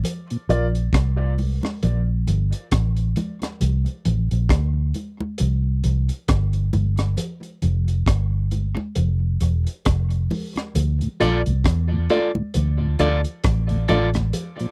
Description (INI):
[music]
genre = dub reggae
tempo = 67 BPM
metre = 4/4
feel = swing 57% on 16ths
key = D minor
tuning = A4 = 442 Hz
[part]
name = crunchy breakbeat drum kit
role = drums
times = 0.0-14.7 s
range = hi-hat, kick drum, rim click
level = -26 LUFS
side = equal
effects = none
[part]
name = congas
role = percussion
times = 0.0-14.6 s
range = none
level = -32 LUFS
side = equal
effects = high-pass filter on perc, tape echo
[part]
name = mellow tonewheel organ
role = accompaniment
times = 0.3-0.4, 11.0-14.7 s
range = D2 to F4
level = -27 LUFS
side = equal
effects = chorus vibrato, slow rotary speaker, high-pass filter
[part]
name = dark upright piano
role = stabs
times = 0.5-0.7, 11.2-14.1 s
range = F4 to D5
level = -28 LUFS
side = equal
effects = high-pass filter, tape echo
[part]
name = vintage muted fingered electric bass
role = bass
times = 0.5-14.3 s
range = E1 to E2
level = -22 LUFS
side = equal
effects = none
[part]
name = electric guitar at the edge of break-up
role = accompaniment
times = 11.2-14.1 s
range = F4 to D5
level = -27 LUFS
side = equal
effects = high-pass filter, tape echo
[sound]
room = little or no reverb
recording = dry, close 1970s-style studio recording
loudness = -22 LUFS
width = mono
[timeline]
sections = 0.0-14.7 A section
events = break 0.0-10.8, 14.3-14.7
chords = 0.0 N.C.; 3.6 C5; 7.2 N.C.; 10.8 Dm